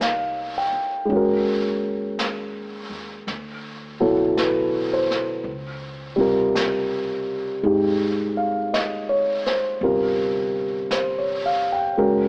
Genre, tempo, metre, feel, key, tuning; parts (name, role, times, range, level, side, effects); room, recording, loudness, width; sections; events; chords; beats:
jazz ballad; 55 BPM; 4/4; swing 66% on 8ths; A4 = 443 Hz
dark grand piano; accompaniment; 0.0-12.3 s; B2 to G5; -23 LUFS; equal
upright bass; bass; 0.0-12.3 s; Gb1 to Eb2; -42 LUFS; equal
jazz brush drum kit; drums; 0.0-12.3 s; brushed snare drum, hi-hat, snare drum; -33 LUFS; equal
light reverb; AM radio sound; -23 LUFS; mono
0.0-12.3 A section
0.0 Fm9; 1.1 Ebm7; 3.3 D69; 5.5 Dbmaj9; 9.8 Bbm69/G
0.01 | 1.11 2.20 3.29 4.38 | 5.46 6.55 7.64 8.73 | 9.81 10.90 11.99